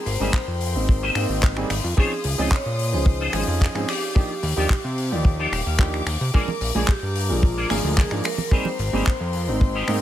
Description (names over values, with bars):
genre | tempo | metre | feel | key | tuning
nu-disco, nu disco | 110 BPM | 4/4 | straight | unclear | A4 = 437 Hz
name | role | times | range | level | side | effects
vibraphone with hard mallets | melody | 0.0-10.0 s | F4 to Eb5 | -31 LUFS | left 1 dB | dub echo
warm chamber string section | sustained chords | 0.0-10.0 s | G4 to Eb6 | -34 LUFS | left 3 dB | sidechain pumping
electric guitar with an envelope filter | riff | 0.1-10.0 s | Eb4 to G5 | -29 LUFS | left 3 dB | ensemble chorus
fat analog bass | bass | 0.1-10.0 s | Eb1 to C3 | -25 LUFS | equal | none
damped 70s drum kit | drums | 0.1-10.0 s | finger snaps, handclaps, hi-hat | -29 LUFS | left 3 dB | none
dark baby grand piano | accompaniment | 0.2-10.0 s | F3 to D5 | -28 LUFS | right 2 dB | sidechain pumping, tape echo
kick drum | drums | 0.3-9.7 s | none | -18 LUFS | equal | none
congas | percussion | 6.5-10.0 s | none | -29 LUFS | right 4 dB | none
room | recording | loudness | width
small room ambience | none | -19 LUFS | side -12 dB against mid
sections
0.0-10.0 A section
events
clean electric guitar fill 5.2-6.3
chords
0.0 Abmaj9; 2.0 Dbmaj9; 3.9 Ebmaj9; 6.3 Bb7; 8.5 Abmaj9